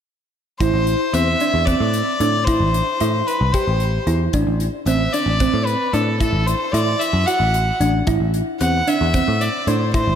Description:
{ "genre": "progressive instrumental, band music in an uneven meter", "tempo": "225 BPM (eighths)", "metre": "7/8", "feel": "straight", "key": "A dorian", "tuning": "A4 = 439 Hz", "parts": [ { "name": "bright violin", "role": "melody", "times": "0.6-10.2 s", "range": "A4 to F#5", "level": "-21 LUFS", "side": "left 1 dB", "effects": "ping-pong delay" }, { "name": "thumb-piano-like synth pluck", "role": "arpeggios", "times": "0.6-10.2 s", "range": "C4 to G4", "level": "-22 LUFS", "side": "right 2 dB", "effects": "chorus, ping-pong delay" }, { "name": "picked electric bass", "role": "bass", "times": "0.6-10.2 s", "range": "A1 to A2", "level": "-20 LUFS", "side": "equal", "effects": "none" }, { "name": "modern studio drum kit", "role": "drums", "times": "0.6-10.1 s", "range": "hi-hat, kick drum", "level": "-25 LUFS", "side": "left 1 dB", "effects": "none" } ], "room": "moderate lush hall reverb, RT60 2.3 s", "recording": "dreamy mix soaked in reverb", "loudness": "-16 LUFS", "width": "side -8 dB against mid", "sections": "0.6-10.2 A section", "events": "none", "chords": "0.6 Am7; 4.3 D/A; 8.1 Am", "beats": "| 0.61 0.88 1.14 1.41 1.68 1.94 2.21 | 2.48 2.74 3.01 3.27 3.54 3.81 4.07 | 4.34 4.61 4.87 5.14 5.41 5.67 5.94 | 6.21 6.47 6.74 7.01 7.27 7.54 7.81 | 8.07 8.34 8.61 8.87 9.14 9.41 9.67 | 9.94" }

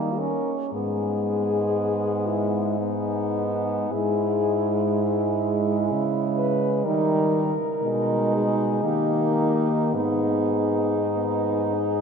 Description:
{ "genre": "classical, lyrical piece for horn quartet", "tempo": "50-64 BPM", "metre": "3/4", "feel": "rubato", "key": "G# minor", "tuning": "A4 = 439 Hz", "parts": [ { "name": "warm French horn", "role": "melody", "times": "0.0-12.0 s", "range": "D#4 to B4", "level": "-27 LUFS", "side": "left 7 dB", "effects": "none" }, { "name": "warm French horn", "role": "second line", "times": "0.0-12.0 s", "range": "A#3 to E4", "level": "-27 LUFS", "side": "right 6 dB", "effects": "none" }, { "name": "warm French horn", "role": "accompaniment", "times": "0.0-12.0 s", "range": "G3 to D#4", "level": "-27 LUFS", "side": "equal", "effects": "none" }, { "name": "warm French horn", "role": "bass", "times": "0.0-12.0 s", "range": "G#2 to D#3", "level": "-28 LUFS", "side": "right 1 dB", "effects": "none" } ], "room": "wet cathedral reverb, RT60 6.5 s", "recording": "none", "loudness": "-21 LUFS", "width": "side -6 dB against mid", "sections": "0.0-12.0 A section", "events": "none", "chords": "0.0 D#; 0.7 G#m; 3.9 C#m/G#; 6.9 D#; 7.8 G#m/B; 8.8 D#; 10.0 G#m", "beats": "| 0.73 1.76 2.79 | 3.91 4.94 5.91 | 6.86 7.82 8.84 | 9.95 11.15" }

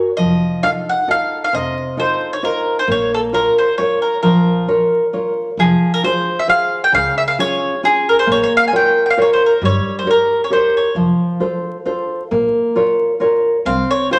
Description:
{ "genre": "italian folk, Italian serenade", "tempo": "134 BPM", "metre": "3/4", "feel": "straight", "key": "Bb harmonic minor, F minor from 5.6 s", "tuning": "A4 = 439 Hz", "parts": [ { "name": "nylon-string guitar", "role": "accompaniment", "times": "0.0-14.2 s", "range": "C3 to Db5", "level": "-18 LUFS", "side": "equal", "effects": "none" }, { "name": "mandolin", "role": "melody", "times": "0.2-11.0, 13.7-14.2 s", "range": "Ab4 to Ab5", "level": "-19 LUFS", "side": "equal", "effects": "none" }, { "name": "upright bass", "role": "bass", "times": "0.2-13.8 s", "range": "F1 to Db2", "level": "-29 LUFS", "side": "equal", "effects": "none" } ], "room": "wet large studio reverb, RT60 1.3 s", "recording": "vinyl crackle", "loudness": "-16 LUFS", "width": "mono", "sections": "0.0-5.6 A section; 5.6-14.2 B section", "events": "break 5.1-5.6", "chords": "0.2 F7; 2.9 Bbm; 5.6 Fm; 6.9 Db; 8.3 Bbm; 9.6 Gdim; 11.0 F; 12.3 Bbm; 13.6 Csus4", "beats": "| 0.18 0.63 1.08 | 1.53 1.98 2.42 | 2.87 3.32 3.77 | 4.22 4.67 5.12 | 5.58 6.03 6.48 | 6.93 7.38 7.82 | 8.27 8.72 9.16 | 9.61 10.06 10.51 | 10.96 11.41 11.86 | 12.31 12.76 13.21 | 13.65 14.09" }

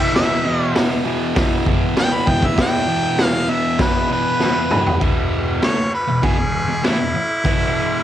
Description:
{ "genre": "garage rock duo or trio", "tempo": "99 BPM", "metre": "4/4", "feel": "straight", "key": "unclear", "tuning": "A4 = 440 Hz", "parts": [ { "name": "clear harmonica", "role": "melody", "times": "0.0-8.0 s", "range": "E4 to B5", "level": "-21 LUFS", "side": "equal", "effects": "overdrive" }, { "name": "fuzz guitar", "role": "riff", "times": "0.0-8.0 s", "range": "E2 to A3", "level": "-20 LUFS", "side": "equal", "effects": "distortion, cassette tape" }, { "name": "raw garage drum kit", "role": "drums", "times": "0.2-7.6 s", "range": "crash cymbal, hi-hat, kick drum, snare drum, toms", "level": "-19 LUFS", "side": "equal", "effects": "cassette tape" } ], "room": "small room ambience", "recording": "home recording on cassette", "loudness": "-16 LUFS", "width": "side -11 dB against mid", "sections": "0.0-5.0 A section; 5.0-8.0 B section", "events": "drum fill 4.4-5.0; harmonica solo 5.0-8.0", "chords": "0.0 E5; 5.0 E", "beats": "| 0.15 0.76 1.36 1.97 | 2.58 3.18 3.79 4.40 | 5.01 5.62 6.22 6.83 | 7.44" }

